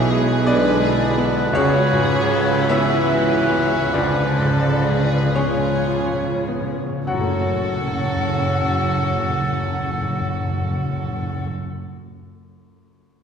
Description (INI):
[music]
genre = classical, romantic movement for piano and orchestra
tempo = 32-59 BPM (dotted quarters)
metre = 12/8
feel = rubato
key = F# minor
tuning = A4 = 441 Hz
[part]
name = clear grand piano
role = melody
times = 0.0-13.2 s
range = B1 to F#5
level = -23 LUFS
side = left 1 dB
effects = none
[part]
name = warm symphonic violin section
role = melody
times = 0.0-11.5 s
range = E4 to C#5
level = -32 LUFS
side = left 3 dB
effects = none
[part]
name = clear oboe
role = second line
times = 0.0-11.5 s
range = A4 to B4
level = -28 LUFS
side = equal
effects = none
[part]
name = mellow hollow silver concert flute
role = second line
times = 0.0-11.5 s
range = C#5 to F#5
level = -28 LUFS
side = right 1 dB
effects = none
[part]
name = warm symphonic violin section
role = second line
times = 0.0-11.5 s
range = E4 to C#5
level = -30 LUFS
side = left 2 dB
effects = none
[part]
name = dark symphonic viola section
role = accompaniment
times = 0.0-11.5 s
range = E#3 to F#4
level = -29 LUFS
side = right 1 dB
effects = none
[part]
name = mellow bassoon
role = accompaniment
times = 0.0-11.5 s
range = E#3 to G#3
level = -31 LUFS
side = right 2 dB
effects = none
[part]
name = warm French horn section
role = sustained chords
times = 0.0-11.5 s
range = C#3 to F#3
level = -28 LUFS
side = left 1 dB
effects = none
[part]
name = dark chamber cello section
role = bass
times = 0.0-11.5 s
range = F#2 to C#3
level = -27 LUFS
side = equal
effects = none
[part]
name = dark chamber double bass section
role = bass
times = 0.0-11.5 s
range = F#1 to C#2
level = -28 LUFS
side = right 3 dB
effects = none
[part]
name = mellow tuba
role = bass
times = 0.0-11.5 s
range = F#1 to C#2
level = -28 LUFS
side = right 2 dB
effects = none
[part]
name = timpani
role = percussion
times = 3.9-11.5 s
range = F#2 to C#3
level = -28 LUFS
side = left 1 dB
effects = none
[sound]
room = wet scoring stage reverb, RT60 1.6 s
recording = heard from further back in the room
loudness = -17 LUFS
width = side -7 dB against mid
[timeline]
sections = 0.0-7.1 A section; 7.1-13.2 B section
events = slowing down 0.0-7.1; timpani fill 3.9-7.1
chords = 0.0 G#dim/B; 1.5 C#7sus4; 3.9 C#7b9; 7.1 F#m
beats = 0.47 | 1.54 2.70 3.94 5.35 | 7.07 8.69 10.33 11.93